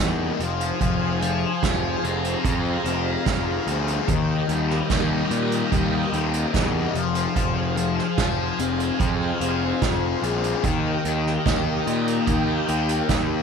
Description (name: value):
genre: psychedelic rock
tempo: 73 BPM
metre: 4/4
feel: straight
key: F minor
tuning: A4 = 440 Hz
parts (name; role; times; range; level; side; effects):
- string machine, violins; sustained chords; 0.0-13.4 s; G4 to Bb5; -29 LUFS; right 14 dB; ensemble chorus
- thick fuzz guitar; riff; 0.0-13.4 s; Eb3 to Ab4; -24 LUFS; left 13 dB; distortion, phaser
- fuzz picked electric bass; bass; 0.0-13.4 s; F1 to Bb2; -26 LUFS; right 1 dB; overdrive
- soft-mallet drum kit; drums; 0.4-13.3 s; hi-hat, kick drum, snare drum; -26 LUFS; right 4 dB; none
room: studio ambience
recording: 1960s-style stereo with parts hard left and right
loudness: -20 LUFS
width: side -6 dB against mid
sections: 0.0-13.4 A section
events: none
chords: 0.4 Fm; 4.1 Eb; 6.9 Fm; 10.6 Eb